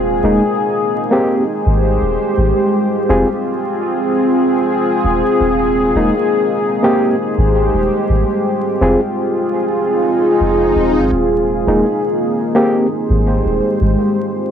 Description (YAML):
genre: trip hop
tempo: 84 BPM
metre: 4/4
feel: swing 55% on 16ths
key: F minor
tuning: A4 = 440 Hz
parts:
  - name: deep dark ambient pad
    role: sustained chords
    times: 0.0-14.5 s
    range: Ab3 to C5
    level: -14 LUFS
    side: equal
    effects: chorus, built-in reverb, cassette tape
  - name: soft 808-style bass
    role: bass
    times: 0.0-14.0 s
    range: Eb1 to Ab1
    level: -17 LUFS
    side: equal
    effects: none
  - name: overdriven reed electric piano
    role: accompaniment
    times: 0.2-12.9 s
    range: Ab3 to Ab4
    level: -17 LUFS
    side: equal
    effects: harmonic tremolo, vintage 12-bit sampler grit, cassette tape, tape echo
  - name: swell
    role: sound effects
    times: 10.0-11.1 s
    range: none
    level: -21 LUFS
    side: left 5 dB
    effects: none
room: moderate studio reverb, RT60 0.6 s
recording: home recording on cassette, vinyl crackle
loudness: -13 LUFS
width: side -8 dB against mid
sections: 0.0-14.5 A section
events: swell 10.0-11.1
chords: 0.0 Ebsus4; 1.1 Abmaj7; 2.5 Fm; 5.4 Ebsus4; 6.8 Abmaj7; 8.3 Fm; 11.1 Ebsus4; 12.5 Abmaj7; 14.0 Fm